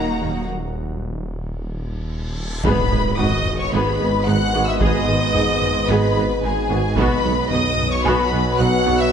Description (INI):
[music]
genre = cinematic, hybrid orchestral and electronic film score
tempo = 111 BPM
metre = 4/4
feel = straight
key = G# minor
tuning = A4 = 440 Hz
[part]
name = warm symphonic violin section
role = melody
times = 0.0-9.1 s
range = G#5 to F#6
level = -24 LUFS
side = left 4 dB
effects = none
[part]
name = warm chamber violin section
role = second line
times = 0.0-9.1 s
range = F#4 to F#5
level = -25 LUFS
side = equal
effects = none
[part]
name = warm symphonic viola section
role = accompaniment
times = 0.0-8.9 s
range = D#3 to G#4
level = -25 LUFS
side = right 1 dB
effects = none
[part]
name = deep dark ambient pad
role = sustained chords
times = 0.0-9.1 s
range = F#3 to F#5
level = -29 LUFS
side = right 1 dB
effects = chorus, built-in reverb
[part]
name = mellow French horn section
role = sustained chords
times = 0.0-9.1 s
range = A#3 to B4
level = -30 LUFS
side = left 5 dB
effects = none
[part]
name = warm trombone section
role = sustained chords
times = 0.0-9.1 s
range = G#2 to D#4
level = -27 LUFS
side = right 3 dB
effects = none
[part]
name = detuned saw bass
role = bass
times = 0.0-9.1 s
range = D#1 to B1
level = -26 LUFS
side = equal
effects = none
[part]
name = rich symphonic cello section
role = bass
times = 0.0-9.0 s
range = G#2 to A#3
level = -30 LUFS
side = right 2 dB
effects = none
[part]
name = felt-muted upright piano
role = texture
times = 0.0-9.1 s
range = D#4 to A#6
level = -32 LUFS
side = equal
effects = none
[part]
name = mellow tuba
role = bass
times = 0.2-9.0 s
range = G#1 to D#2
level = -26 LUFS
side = right 4 dB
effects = none
[part]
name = rich symphonic double bass section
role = bass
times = 0.2-8.9 s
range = G#1 to D#2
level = -26 LUFS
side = right 2 dB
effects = none
[part]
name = reverse cymbal and impact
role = sound effects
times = 2.2-4.8 s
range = none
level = -30 LUFS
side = equal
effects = none
[part]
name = taiko ensemble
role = drums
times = 2.6-8.0 s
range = none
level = -26 LUFS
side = equal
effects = none
[sound]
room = wet scoring stage reverb, RT60 1.6 s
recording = nothing above 10.9 kHz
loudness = -17 LUFS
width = side -8 dB against mid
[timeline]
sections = 0.0-2.6 A section; 2.6-9.1 B section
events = break 0.5-2.6; drum fill 1.8-2.6; reverse cymbal 2.2-2.6; impact 2.6-4.8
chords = 0.0 D#m; 2.6 G#m; 7.0 B